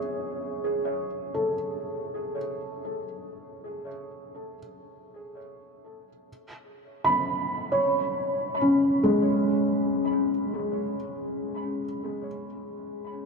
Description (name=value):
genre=ambient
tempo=free time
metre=none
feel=none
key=unclear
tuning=A4 = 440 Hz
part: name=felt-muted upright piano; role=solo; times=0.0-13.3 s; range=G#3 to B5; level=-26 LUFS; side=equal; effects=tape echo
room=wet huge ambient reverb, RT60 8.4 s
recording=dark, warm production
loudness=-24 LUFS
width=side -4 dB against mid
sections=0.0-13.3 A section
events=none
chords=0.0 C#m; 6.3 C#7(no3)